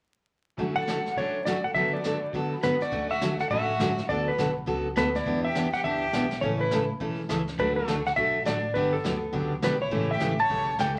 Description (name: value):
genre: country, western swing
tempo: 206 BPM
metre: 4/4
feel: swing 61% on 8ths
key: D major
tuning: A4 = 442 Hz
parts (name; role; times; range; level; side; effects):
- picked steel-string acoustic guitar; accompaniment; 0.6-10.9 s; C#3 to A4; -31 LUFS; equal; none
- tack piano; accompaniment; 0.6-3.0 s; D2 to B5; -42 LUFS; equal; none
- vintage brush drum kit; drums; 0.6-11.0 s; brushed snare drum, hi-hat, kick drum, snare drum; -40 LUFS; equal; none
- clean lap steel guitar; melody; 0.8-11.0 s; A4 to A5; -30 LUFS; equal; none
- clear fiddle; second line; 0.8-11.0 s; A3 to C#5; -37 LUFS; equal; none
- upright bass; bass; 2.9-11.0 s; G1 to E2; -38 LUFS; equal; none
room: wet club reverb, RT60 0.6 s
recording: vinyl crackle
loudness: -27 LUFS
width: mono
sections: 0.6-2.9 A section; 2.9-11.0 B section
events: none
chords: 0.6 Dmaj7; 1.8 Bm7/D; 2.9 Dmaj7; 4.1 Bm7; 5.3 Em7; 6.4 A; 7.6 D; 8.8 Gmaj7; 9.9 A7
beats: | 0.58 0.87 1.16 1.46 | 1.75 2.04 2.33 2.63 | 2.92 3.21 3.50 3.80 | 4.09 4.38 4.67 4.96 | 5.26 5.55 5.84 6.13 | 6.42 6.71 7.00 7.30 | 7.59 7.88 8.17 8.46 | 8.75 9.04 9.34 9.63 | 9.92 10.21 10.50 10.79